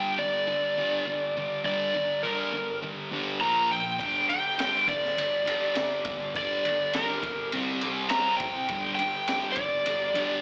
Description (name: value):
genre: garage rock duo or trio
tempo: 102 BPM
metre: 4/4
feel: straight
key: G minor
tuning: A4 = 440 Hz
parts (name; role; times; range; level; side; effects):
- overdriven slide guitar; melody; 0.0-10.4 s; Bb4 to Bb5; -29 LUFS; equal; none
- thick fuzz guitar; riff; 0.0-10.4 s; G2 to C4; -34 LUFS; equal; distortion
- crunchy breakbeat drum kit; drums; 4.0-10.3 s; kick drum, ride cymbal, snare drum; -37 LUFS; equal; none
room: light reverb, small room ambience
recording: live gig heard through the venue's PA, club reverb, AM radio sound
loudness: -28 LUFS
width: mono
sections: 0.0-10.4 A section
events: none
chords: 0.0 G5; 3.4 Bb5; 4.0 G5; 7.5 C5; 8.7 G5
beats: 0.48 1.07 | 1.65 2.24 2.83 3.42 | 4.00 4.59 5.18 5.76 | 6.35 6.94 7.53 8.11 | 8.70 9.29 9.87